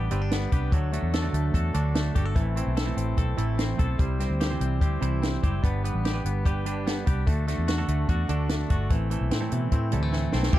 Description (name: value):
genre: jangly indie pop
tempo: 147 BPM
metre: 4/4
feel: straight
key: unclear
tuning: A4 = 440 Hz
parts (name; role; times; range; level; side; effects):
- semi-hollow electric guitar; accompaniment; 0.0-10.6 s; A2 to C5; -32 LUFS; right 8 dB; warbly pitch drift
- direct-recorded clean electric guitar; arpeggios; 0.0-10.6 s; E3 to A4; -33 LUFS; left 8 dB; none
- vintage muted fingered electric bass; bass; 0.0-10.6 s; F#1 to B2; -26 LUFS; equal; none
- compact cocktail drum kit; drums; 0.1-10.6 s; crash cymbal, hi-hat, kick drum, snare drum; -26 LUFS; equal; none
- phased analog pad; sustained chords; 10.5-10.6 s; G4 to G5; -31 LUFS; right 1 dB; phaser, chorus
room: light reverb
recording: dark, warm production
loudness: -23 LUFS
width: side -14 dB against mid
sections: 0.0-10.5 A section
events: drum fill 10.1-10.5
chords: 0.0 G; 0.7 D; 2.4 Am; 4.0 C; 5.6 G; 7.3 D; 8.9 Am